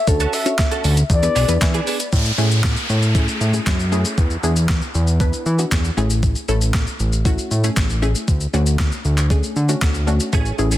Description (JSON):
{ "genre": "dance-pop", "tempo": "117 BPM", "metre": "4/4", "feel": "straight", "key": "A major", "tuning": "A4 = 440 Hz", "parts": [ { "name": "mellow horn-like synth lead", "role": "melody", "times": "0.0-1.8 s", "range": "A4 to E5", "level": "-22 LUFS", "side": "left 4 dB", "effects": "chorus, ping-pong delay" }, { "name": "direct-recorded clean electric guitar", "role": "riff", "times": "0.0-2.1, 10.3-10.8 s", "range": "A3 to A4", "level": "-26 LUFS", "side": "right 7 dB", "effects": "ensemble chorus" }, { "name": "wide unison pluck", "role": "accompaniment", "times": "0.1-10.8 s", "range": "A3 to C#5", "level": "-25 LUFS", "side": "left 1 dB", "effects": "sidechain pumping" }, { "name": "fat analog bass", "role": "bass", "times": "0.1-10.8 s", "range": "A1 to E3", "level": "-18 LUFS", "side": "equal", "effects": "sidechain pumping" }, { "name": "crisp 8-bit digital drum machine", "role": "drums", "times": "0.1-10.8 s", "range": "handclaps, hi-hat, kick drum, shaker, snare drum", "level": "-21 LUFS", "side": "equal", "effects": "none" }, { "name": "downlifter", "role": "sound effects", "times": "2.1-6.2 s", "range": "none", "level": "-27 LUFS", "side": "equal", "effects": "none" } ], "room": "little or no reverb", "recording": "dense, heavily limited modern master", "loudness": "-16 LUFS", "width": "side -14 dB against mid", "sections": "0.0-2.1 A section; 2.1-10.8 B section", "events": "none", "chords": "0.1 Dmaj7; 1.1 E7; 2.1 Amaj7; 4.2 E7; 6.0 Amaj7; 8.3 Dmaj7" }